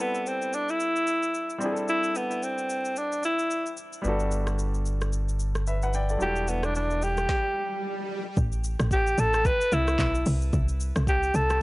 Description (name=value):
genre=amapiano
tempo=111 BPM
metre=4/4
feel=swing 58% on 16ths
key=unclear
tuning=A4 = 441 Hz
part: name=clear alto saxophone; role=melody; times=0.0-11.6 s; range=B3 to B4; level=-26 LUFS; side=equal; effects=tape echo
part: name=clear baby grand piano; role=accompaniment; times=0.0-7.3 s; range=F#3 to G5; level=-32 LUFS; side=equal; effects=none
part: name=afro-pop drum kit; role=drums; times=0.1-11.6 s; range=handclaps, hi-hat, kick drum, rim click, shaker, snare drum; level=-31 LUFS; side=equal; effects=none
part: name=sub bass with octave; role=bass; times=4.0-7.3 s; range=E1 to G1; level=-27 LUFS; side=equal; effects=none
part: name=swell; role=sound effects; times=6.9-8.4 s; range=none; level=-36 LUFS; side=right 1 dB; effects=none
part: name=woody log drum bass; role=bass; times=8.4-11.6 s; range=A1 to C2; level=-26 LUFS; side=equal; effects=none
room=digital ambience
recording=dry, gritty hardware recording, transformer saturation, nothing above 10.7 kHz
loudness=-24 LUFS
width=side -22 dB against mid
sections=0.0-8.4 A section; 8.4-11.6 B section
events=swell 6.9-8.4; stop 7.3-8.4; drop 8.4-11.6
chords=0.0 Am9; 1.6 C69; 4.0 Gmaj9; 6.2 Em11; 8.4 Amadd9; 10.3 Am7 (rootless)